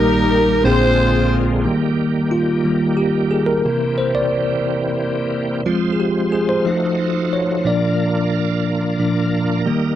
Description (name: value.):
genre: gospel.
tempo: 60 BPM (dotted quarters).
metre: 6/8.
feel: straight.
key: Eb major.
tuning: A4 = 438 Hz.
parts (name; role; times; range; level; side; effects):
raspy alto saxophone; melody; 0.0-1.4 s; Bb4 to C5; -20 LUFS; right 5 dB; none.
warm studio string section; melody; 0.0-1.6 s; Eb4 to C5; -20 LUFS; left 4 dB; none.
bell-like tine electric piano; accompaniment; 0.0-10.0 s; Bb1 to G5; -17 LUFS; left 1 dB; medium stereo tremolo.
bright tonewheel organ; sustained chords; 0.0-10.0 s; Bb2 to C5; -23 LUFS; right 4 dB; slow rotary speaker, chorus vibrato.
room: little or no reverb.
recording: dry, close 1970s-style studio recording.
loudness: -15 LUFS.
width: side -12 dB against mid.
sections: 0.0-1.6 A section; 1.6-10.0 B section.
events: tine electric piano solo 1.6-10.0.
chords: 0.0 Eb/Bb; 0.6 Bb13; 1.6 Eb; 3.7 C7; 5.7 Fm; 6.7 F7b9; 7.7 Bb.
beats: 0.64 | 1.65 2.65 | 3.65 4.65 | 5.66 6.66 | 7.66 8.66 | 9.65.